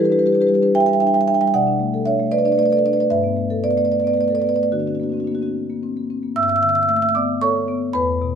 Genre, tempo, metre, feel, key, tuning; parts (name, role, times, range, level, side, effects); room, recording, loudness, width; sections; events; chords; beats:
classical, contemporary piece for solo marimba; 76 BPM (dotted quarters); 6/8; straight; G major; A4 = 445 Hz
marimba with soft mallets; solo; 0.0-8.4 s; E2 to E6; -16 LUFS; right 1 dB
moderate recital hall reverb, RT60 1.4 s; close, detailed microphones; -16 LUFS; side -7 dB against mid
0.0-6.4 A section; 6.4-8.4 B section
0.0 Em7; 1.5 Bm7; 3.1 G69; 4.7 Daug7; 6.4 Gadd9
0.76 | 1.54 2.33 | 3.11 3.91 | 4.72 5.55 | 6.36 7.15 | 7.94